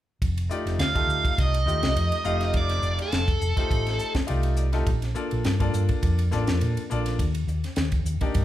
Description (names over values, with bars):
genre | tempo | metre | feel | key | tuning
electric jazz fusion | 103 BPM | 4/4 | swing 53% on 16ths | F mixolydian | A4 = 439 Hz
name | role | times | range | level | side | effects
hollow-body short-scale fingered electric bass | bass | 0.2-8.4 s | F1 to Bb2 | -25 LUFS | equal | none
tight funk drum kit | drums | 0.2-8.4 s | hi-hat, kick drum, ride cymbal, snare drum | -28 LUFS | equal | none
bright baby grand piano | accompaniment | 0.5-8.4 s | A3 to A5 | -30 LUFS | left 2 dB | none
dark smooth lead guitar | melody | 0.8-4.1 s | A4 to F5 | -28 LUFS | equal | overdrive
mellow hollow silver concert flute | second line | 0.8-4.1 s | A5 to F6 | -32 LUFS | right 5 dB | none
room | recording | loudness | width
moderate large studio reverb, RT60 0.9 s | band playing live in one room | -22 LUFS | side -13 dB against mid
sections
0.2-8.4 A section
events
grand piano fill 3.7-4.9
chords
0.2 F13; 4.9 Bbmaj7; 7.2 Ebmaj7